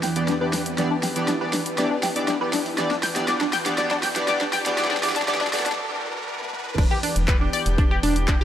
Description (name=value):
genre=progressive house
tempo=120 BPM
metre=4/4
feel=straight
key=unclear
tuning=A4 = 441 Hz
part: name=lush unison pad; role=sustained chords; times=0.0-8.4 s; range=E2 to G4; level=-31 LUFS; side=equal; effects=chorus, phaser, sidechain pumping
part: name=tight sequenced synth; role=arpeggios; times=0.0-8.4 s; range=D4 to G5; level=-26 LUFS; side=left 1 dB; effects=chorus, phaser, sidechain pumping, dub echo
part: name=big-room dance drum kit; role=drums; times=0.0-8.4 s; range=crash cymbal, handclaps, hi-hat, snare drum, toms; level=-28 LUFS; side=equal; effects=overdrive
part: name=riser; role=sound effects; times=0.1-6.8 s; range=none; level=-35 LUFS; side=right 1 dB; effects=none
part: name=chorused polysynth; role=stabs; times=0.2-5.6 s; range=E3 to D5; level=-27 LUFS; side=equal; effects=vintage 12-bit sampler grit, sidechain pumping, dub echo
part: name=round analog bass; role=bass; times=6.8-8.4 s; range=E1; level=-24 LUFS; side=equal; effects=sidechain pumping
part: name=electronic kick drum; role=drums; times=6.8-8.4 s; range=none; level=-20 LUFS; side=equal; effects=none
part: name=drifting glass-harmonics texture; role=texture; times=7.1-8.4 s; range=G4 to G5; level=-34 LUFS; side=left 2 dB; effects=chorus, built-in reverb, sidechain pumping
room=moderate huge ambient reverb, RT60 6.2 s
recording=high-pass filter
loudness=-20 LUFS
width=side -10 dB against mid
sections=0.0-6.8 A section; 6.8-8.4 B section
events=build-up 0.0-6.8; drum fill 0.0-5.8, 6.4-6.8; filter sweep on synth arpeggio sound 0.0-6.8; filter sweep 0.0-6.8; riser 0.1-6.8; break 5.8-6.8; drop 6.8-8.4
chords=0.0 G/E; 6.8 Em7